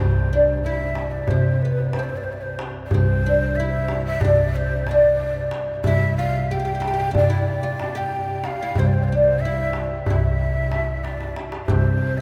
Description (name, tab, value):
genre	Turkish makam ensemble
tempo	184 BPM (eighths)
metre	9/8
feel	straight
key	C makam rast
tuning	A4 = 440 Hz
part	oud	melody	0.0-12.2 s	B3 to G4	-26 LUFS	equal	none
part	breathy ney	second line	0.0-12.2 s	B4 to G5	-30 LUFS	equal	none
part	upright bass	bass	0.0-12.2 s	C2 to C3	-26 LUFS	equal	none
part	darbuka	percussion	0.8-11.8 s	none	-27 LUFS	equal	none
room	wet cathedral reverb, RT60 5.9 s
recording	recorded in a church or concert hall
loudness	-21 LUFS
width	mono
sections	0.0-12.2 A section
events	drum fill 11.0-11.7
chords	none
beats	0.31 0.64 0.96 1.29 1.61 1.94 2.26 2.59 | 2.91 3.24 3.56 3.89 4.21 4.54 4.86 5.19 5.51 | 5.84 6.17 6.49 6.82 7.14 7.47 7.79 8.12 8.44 | 8.77 9.10 9.42 9.75 10.07 10.40 10.72 11.05 11.38 | 11.70 12.03